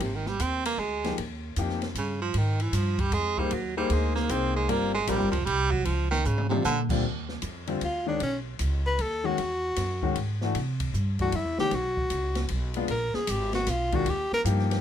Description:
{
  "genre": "jazz, small-group swing and bop",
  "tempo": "154 BPM",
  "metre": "3/4",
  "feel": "swing 66% on 8ths",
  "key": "unclear",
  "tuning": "A4 = 439 Hz",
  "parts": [
    { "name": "clear baritone saxophone", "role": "second line", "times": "0.0-6.8 s", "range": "C3 to C4", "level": "-28 LUFS", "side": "right 5 dB", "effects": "none" },
    { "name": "upright bass", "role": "bass", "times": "0.0-14.8 s", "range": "F1 to C3", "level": "-29 LUFS", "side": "equal", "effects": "none" },
    { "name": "open jazz drum kit", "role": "drums", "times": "0.0-14.8 s", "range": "crash cymbal, hi-hat, kick drum, ride cymbal, snare drum, toms", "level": "-34 LUFS", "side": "equal", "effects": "none" },
    { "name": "warm concert grand piano", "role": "accompaniment", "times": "1.0-14.8 s", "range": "Eb2 to C5", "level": "-30 LUFS", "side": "left 6 dB", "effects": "none" },
    { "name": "warm tenor saxophone", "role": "melody", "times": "7.8-14.4 s", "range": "C#4 to B4", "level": "-28 LUFS", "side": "left 1 dB", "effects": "none" }
  ],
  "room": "little or no reverb",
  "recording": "close, detailed microphones",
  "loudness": "-25 LUFS",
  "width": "side -9 dB against mid",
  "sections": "0.0-7.0 A section; 7.0-14.8 A section",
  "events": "baritone saxophone solo 0.0-7.0; drum fill 6.2-6.6; tenor saxophone solo 7.0-14.8",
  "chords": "0.0 Fm7 (rootless); 1.2 Ebadd9; 2.4 Abmaj7(no3); 3.5 Abadd9; 4.7 Gm7; 5.9 Db; 6.6 Bb69; 7.0 Ebmaj7sus2; 8.2 Badd9; 9.4 Eadd9; 10.5 C; 11.7 Bsus2; 12.9 Bb7(no3); 14.1 Ebadd9"
}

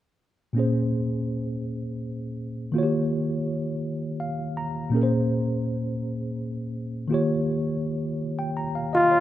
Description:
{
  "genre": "R&B",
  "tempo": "55 BPM (dotted quarters)",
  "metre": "6/8",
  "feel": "straight",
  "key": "Bb dorian",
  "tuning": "A4 = 439 Hz",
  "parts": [
    { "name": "tine electric piano", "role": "accompaniment", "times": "0.5-9.2 s", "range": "Bb2 to Bb5", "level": "-25 LUFS", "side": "equal", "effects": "overdrive, fast stereo tremolo" },
    { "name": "breathy flugelhorn", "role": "melody", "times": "8.9-9.2 s", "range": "F4", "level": "-16 LUFS", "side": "left 1 dB", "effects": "none" }
  ],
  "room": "light reverb",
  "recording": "rough home demo mix",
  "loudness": "-24 LUFS",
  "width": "side -13 dB against mid",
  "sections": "0.6-9.2 A section",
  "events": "tine electric piano fill 3.8-4.9",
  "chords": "0.6 Bbm9; 2.7 Eb9; 4.9 Bbm9; 7.1 Eb9"
}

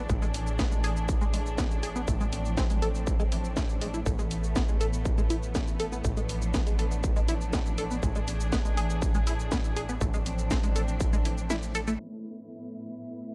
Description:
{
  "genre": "melodic techno",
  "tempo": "121 BPM",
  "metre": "4/4",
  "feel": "straight",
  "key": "A harmonic minor",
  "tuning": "A4 = 441 Hz",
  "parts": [
    { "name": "warm studio string section", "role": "sustained chords", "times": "0.0-13.3 s", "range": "A2 to E5", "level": "-39 LUFS", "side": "equal", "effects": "sidechain pumping" },
    { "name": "tight sequenced synth", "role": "arpeggios", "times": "0.0-11.9 s", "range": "E3 to A4", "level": "-38 LUFS", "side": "equal", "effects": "chorus, phaser, sidechain pumping, tape echo" },
    { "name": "tight sequencer bass", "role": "bass", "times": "0.0-12.0 s", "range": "A1", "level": "-35 LUFS", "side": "equal", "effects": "sidechain pumping" },
    { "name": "bowed-like drone", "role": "drone", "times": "0.0-13.3 s", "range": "A2 to A3", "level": "-46 LUFS", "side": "equal", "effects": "none" },
    { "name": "electronic kick drum", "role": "drums", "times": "0.1-11.1 s", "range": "none", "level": "-31 LUFS", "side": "equal", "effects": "distortion" },
    { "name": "techno drum kit", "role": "drums", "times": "0.1-12.0 s", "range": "hi-hat, shaker, snare drum", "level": "-38 LUFS", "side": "equal", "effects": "low-pass filter on perc, low-pass filter on hats, low-pass filter on snare, low-pass filter on room" }
  ],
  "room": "digital ambience",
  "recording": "dark, warm production, low-pass filter",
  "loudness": "-29 LUFS",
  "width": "mono",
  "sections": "0.0-12.0 A section; 12.0-13.3 B section",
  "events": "kick drops out 11.5-12.0; band accent 11.5; filter sweep 12.0-13.3",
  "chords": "0.1 E7/A; 2.1 Dm7/A; 4.1 Asus2; 6.0 Bdim/A; 8.0 E7/A; 10.0 Dm7/A; 12.0 Asus2"
}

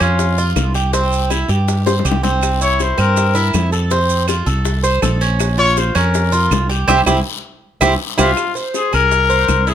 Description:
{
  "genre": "latin, Cuban son and guajira",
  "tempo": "161 BPM",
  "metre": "4/4",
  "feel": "straight",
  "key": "unclear",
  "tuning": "A4 = 440 Hz",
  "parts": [
    { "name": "warm trumpet", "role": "melody", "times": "0.0-9.7 s", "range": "F4 to Db5", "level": "-16 LUFS", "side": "left 5 dB", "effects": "none" },
    { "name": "Cuban tres", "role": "arpeggios", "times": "0.0-9.7 s", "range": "C4 to C5", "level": "-18 LUFS", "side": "right 4 dB", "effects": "none" },
    { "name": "mellow fretless electric bass", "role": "bass", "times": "0.0-9.7 s", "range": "Bb1 to G2", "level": "-17 LUFS", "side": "equal", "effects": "none" },
    { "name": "bongos", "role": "percussion", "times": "0.0-9.7 s", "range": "none", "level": "-24 LUFS", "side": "left 7 dB", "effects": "none" },
    { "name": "claves", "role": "percussion", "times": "0.0-9.7 s", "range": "none", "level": "-27 LUFS", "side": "right 10 dB", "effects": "none" },
    { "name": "guiro", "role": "percussion", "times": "0.0-9.7 s", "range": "none", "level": "-29 LUFS", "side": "left 9 dB", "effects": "none" },
    { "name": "maracas", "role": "percussion", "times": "0.0-9.7 s", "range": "none", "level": "-29 LUFS", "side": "right 10 dB", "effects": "none" }
  ],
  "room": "little or no reverb",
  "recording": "close, detailed microphones",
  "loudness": "-13 LUFS",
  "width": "side -10 dB against mid",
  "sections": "0.0-8.4 A section; 8.4-9.7 B section",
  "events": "trumpet solo 0.0-8.4; drum fill 1.9-2.4, 7.4-8.4; band accent 6.9-8.4",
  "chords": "0.0 Bbm (rootless); 0.9 C; 3.9 F; 5.4 Bbm; 6.9 C; 8.4 C7(#5, no3)"
}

